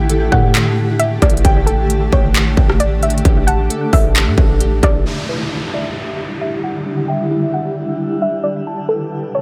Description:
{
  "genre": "hip hop, atmospheric cloud-rap",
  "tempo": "133 BPM",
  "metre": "4/4",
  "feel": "half-time",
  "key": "E minor",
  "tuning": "A4 = 440 Hz",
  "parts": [
    { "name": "soft round pluck", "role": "melody", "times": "0.0-9.4 s", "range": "A4 to G5", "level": "-24 LUFS", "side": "equal", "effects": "chorus, low-pass filter, tape echo" },
    { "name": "granular cloud pad", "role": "sustained chords", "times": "0.0-9.4 s", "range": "D3 to G4", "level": "-23 LUFS", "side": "equal", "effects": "built-in reverb, sidechain pumping, low-pass filter" },
    { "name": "glassy digital keys", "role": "arpeggios", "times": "0.0-9.4 s", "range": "D4 to A5", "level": "-27 LUFS", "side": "equal", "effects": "chorus, low-pass filter, tape echo" },
    { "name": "clean 808-style bass", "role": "bass", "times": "0.0-5.0 s", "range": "A1 to A2", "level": "-18 LUFS", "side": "equal", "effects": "none" },
    { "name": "industrial drum kit", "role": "drums", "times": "0.1-4.9 s", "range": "handclaps, hi-hat, kick drum, rim click", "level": "-18 LUFS", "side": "equal", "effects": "distortion" },
    { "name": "downlifter", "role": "sound effects", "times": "5.1-8.7 s", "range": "none", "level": "-30 LUFS", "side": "equal", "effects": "none" }
  ],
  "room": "light reverb",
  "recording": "none",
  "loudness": "-16 LUFS",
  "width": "mono",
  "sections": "0.0-5.1 A section; 5.1-9.4 B section",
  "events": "filter sweep 5.1-9.4",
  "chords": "0.0 A7sus4; 5.1 Em7; 8.7 Bm7"
}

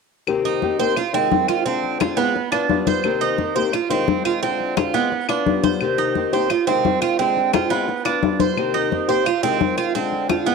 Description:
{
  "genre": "latin, Cuban son and guajira",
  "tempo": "174 BPM",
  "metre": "4/4",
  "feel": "straight",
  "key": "C minor",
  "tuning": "A4 = 436 Hz",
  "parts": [
    { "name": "flamenco guitar", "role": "accompaniment", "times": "0.3-10.5 s", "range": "C3 to G4", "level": "-23 LUFS", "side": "left 8 dB", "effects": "cassette tape" },
    { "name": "claves", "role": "percussion", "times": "0.3-10.5 s", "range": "none", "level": "-29 LUFS", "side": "left 12 dB", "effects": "none" },
    { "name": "congas", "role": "percussion", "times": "0.3-10.5 s", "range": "none", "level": "-23 LUFS", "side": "left 10 dB", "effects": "none" },
    { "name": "Cuban tres", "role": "arpeggios", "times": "0.5-10.5 s", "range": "B3 to C5", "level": "-20 LUFS", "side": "right 10 dB", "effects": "cassette tape" }
  ],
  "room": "wet spring reverb, RT60 2.1 s",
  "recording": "home recording on cassette",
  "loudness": "-18 LUFS",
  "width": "side -4 dB against mid",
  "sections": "0.3-10.5 A section",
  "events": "none",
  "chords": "0.3 Cm7; 1.0 Fm7; 1.7 Dm7b5; 2.4 G7; 3.0 Cm7; 3.7 Fm7; 4.4 Dm7b5; 5.1 G7; 5.8 Cm7; 6.5 Fm7; 7.2 Dm7b5; 7.9 G7; 8.6 Cm7; 9.3 Fm7; 10.0 Dm7b5"
}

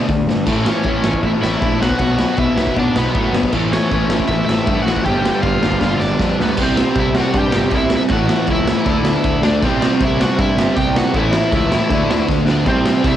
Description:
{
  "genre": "punk rock",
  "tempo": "158 BPM",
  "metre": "4/4",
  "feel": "straight",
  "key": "unclear",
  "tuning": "A4 = 440 Hz",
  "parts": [
    { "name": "sludgy distorted guitar", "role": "riff", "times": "0.0-13.2 s", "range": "G2 to D4", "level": "-21 LUFS", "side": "left 7 dB", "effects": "overdrive, cassette tape" },
    { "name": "sludgy distorted guitar", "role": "riff", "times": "0.0-13.2 s", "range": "G2 to D4", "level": "-22 LUFS", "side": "right 8 dB", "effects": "overdrive, cassette tape" },
    { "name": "fuzz picked electric bass", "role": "bass", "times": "0.0-13.2 s", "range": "G1 to A2", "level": "-22 LUFS", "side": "equal", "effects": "overdrive" },
    { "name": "raw garage drum kit", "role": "drums", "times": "0.1-13.1 s", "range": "crash cymbal, hi-hat, kick drum, ride cymbal, snare drum", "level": "-19 LUFS", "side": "equal", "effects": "cassette tape" },
    { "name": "distorted electric guitar", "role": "riff", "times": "0.5-13.2 s", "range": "G2 to D4", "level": "-24 LUFS", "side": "right 1 dB", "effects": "none" },
    { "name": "cranked stack guitar", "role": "melody", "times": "0.6-13.2 s", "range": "B3 to G5", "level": "-22 LUFS", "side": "equal", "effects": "overdrive" }
  ],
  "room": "studio ambience",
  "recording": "home recording on cassette",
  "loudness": "-14 LUFS",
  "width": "side -11 dB against mid",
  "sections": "0.5-6.6 A section; 6.6-13.2 B section",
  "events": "drum fill 0.3, 5.8-6.6, 12.3-12.7",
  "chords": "0.5 A; 1.8 Bm; 3.5 A; 5.1 G7; 6.6 C; 8.1 A; 8.9 D5; 9.6 C; 11.1 A; 11.9 D5"
}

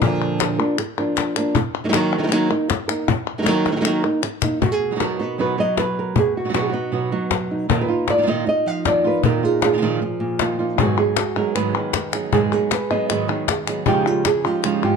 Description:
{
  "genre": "flamenco",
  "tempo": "156 BPM",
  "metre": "4/4",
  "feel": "straight",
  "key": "unclear",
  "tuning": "A4 = 440 Hz",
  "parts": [
    { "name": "flamenco guitar", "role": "melody", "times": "0.0-15.0 s", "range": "Ab2 to F5", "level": "-20 LUFS", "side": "right 2 dB", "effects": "none" },
    { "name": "cajon", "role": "percussion", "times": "0.0-14.4 s", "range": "none", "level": "-23 LUFS", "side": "left 8 dB", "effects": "none" },
    { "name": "palmas hand claps", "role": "percussion", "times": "0.0-4.6, 10.8-15.0 s", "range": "none", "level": "-27 LUFS", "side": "left 10 dB", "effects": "none" },
    { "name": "flamenco guitar", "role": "stabs", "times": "4.6-15.0 s", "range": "Ab2 to Ab4", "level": "-24 LUFS", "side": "right 6 dB", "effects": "none" }
  ],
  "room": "light reverb",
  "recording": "dark, warm production",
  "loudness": "-18 LUFS",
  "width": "side -5 dB against mid",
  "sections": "0.0-4.6 A section; 4.6-15.0 B section",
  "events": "drum fill 3.5-4.6",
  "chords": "0.0 Bb; 1.6 Ebm; 4.6 B; 7.7 Bbsus4; 10.8 Abm7; 13.9 Dbadd9"
}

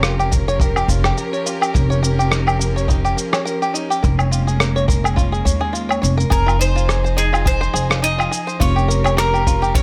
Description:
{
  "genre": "folktronica",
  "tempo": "105 BPM",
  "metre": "4/4",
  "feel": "swing 56% on 16ths",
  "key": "unclear",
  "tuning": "A4 = 440 Hz",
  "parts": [
    { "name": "clear string quartet", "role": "sustained chords", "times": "0.0-9.8 s", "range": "F3 to Bb4", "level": "-29 LUFS", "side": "equal", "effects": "vintage 12-bit sampler grit" },
    { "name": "bluegrass banjo", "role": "arpeggios", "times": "0.0-9.8 s", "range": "Eb4 to Db5", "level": "-25 LUFS", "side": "equal", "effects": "delay" },
    { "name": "upright bass", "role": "bass", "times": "0.0-9.8 s", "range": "F1 to Eb2", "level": "-21 LUFS", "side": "equal", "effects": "none" },
    { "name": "electronic rim click, cabasa and woodblock", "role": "drums", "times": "0.0-9.8 s", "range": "none", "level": "-24 LUFS", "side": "equal", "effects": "none" },
    { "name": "kick drum", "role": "drums", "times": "0.3-9.8 s", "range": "none", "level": "-21 LUFS", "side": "equal", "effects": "none" },
    { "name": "bowl-back mandolin", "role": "melody", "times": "6.3-9.8 s", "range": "Ab4 to Eb5", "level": "-23 LUFS", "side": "equal", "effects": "delay" }
  ],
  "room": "light reverb",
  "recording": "none",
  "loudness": "-18 LUFS",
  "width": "mono",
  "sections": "0.0-9.8 A section",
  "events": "none",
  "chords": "0.0 Gm7b5/F; 1.8 Eb7/F; 4.0 Bbm7/F; 6.3 Fm7; 8.6 Gm7b5/F"
}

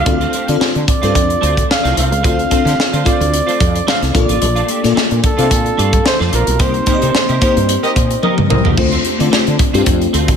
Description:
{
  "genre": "polished 1980s jazz-funk pop",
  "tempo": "110 BPM",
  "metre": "4/4",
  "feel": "swing 54% on 16ths",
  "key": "unclear",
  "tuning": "A4 = 440 Hz",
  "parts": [
    { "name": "warm flugelhorn", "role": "melody", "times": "0.0-8.2 s", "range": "A4 to F5", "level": "-19 LUFS", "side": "right 2 dB", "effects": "slapback echo" },
    { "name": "warm horn section", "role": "second line", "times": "0.0, 7.8-8.7 s", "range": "C4 to Eb5", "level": "-22 LUFS", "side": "left 2 dB", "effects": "slapback echo" },
    { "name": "bell-like FM electric piano", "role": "accompaniment", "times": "0.0-10.4 s", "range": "A3 to F5", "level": "-18 LUFS", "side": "left 4 dB", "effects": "tremolo, ensemble chorus, slapback echo" },
    { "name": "twelve-string electric guitar", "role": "riff", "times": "0.0-10.3 s", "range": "A3 to A4", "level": "-23 LUFS", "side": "right 5 dB", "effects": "ensemble chorus, slapback echo" },
    { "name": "woody fretless electric bass", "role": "bass", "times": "0.0-10.3 s", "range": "A1 to D3", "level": "-17 LUFS", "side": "equal", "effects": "analog chorus" },
    { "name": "tight funk drum kit", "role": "drums", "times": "0.1-10.4 s", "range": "crash cymbal, hi-hat, kick drum, snare drum, toms", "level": "-16 LUFS", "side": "equal", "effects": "none" }
  ],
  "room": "light reverb, small room reverb",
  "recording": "none",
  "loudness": "-11 LUFS",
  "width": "side -7 dB against mid",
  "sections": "0.0-8.8 A section; 8.8-10.4 A section",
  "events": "band accent 6.6-8.8; drum fill 8.2-8.8",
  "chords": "0.1 Dm7; 4.1 Bbmaj7; 6.6 Cm7; 8.8 Dm7"
}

